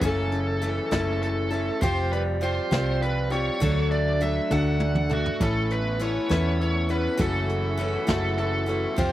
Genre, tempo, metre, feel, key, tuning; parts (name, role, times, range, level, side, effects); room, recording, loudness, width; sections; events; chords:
folk rock and heartland rock; 67 BPM (dotted quarters); 6/8; straight; A4 = 441 Hz
bluesy overdriven lead guitar; melody; 0.0-9.1 s; F#4 to F#5; -29 LUFS; right 1 dB; distortion
picked steel-string acoustic guitar; accompaniment; 0.0-9.1 s; F#2 to B4; -29 LUFS; left 4 dB; slapback echo
electric guitar through a small old amp; riff; 0.0-9.1 s; F#2 to B3; -31 LUFS; right 1 dB
hollow-body short-scale fingered electric bass; bass; 0.0-9.1 s; F1 to E2; -27 LUFS; right 1 dB
jazz brush drum kit; drums; 0.0-9.1 s; hi-hat, kick drum, snare drum, toms; -28 LUFS; right 1 dB
warm symphonic string section; sustained chords; 5.4-9.1 s; A3 to A4; -36 LUFS; right 1 dB
little or no reverb; recorded outdoors, with no room sound; -22 LUFS; side -14 dB against mid
0.0-9.1 A section
drum fill 4.5-5.4
0.0 F#m7; 1.8 Fsus2; 3.6 D; 5.4 Aadd9; 7.2 F#m7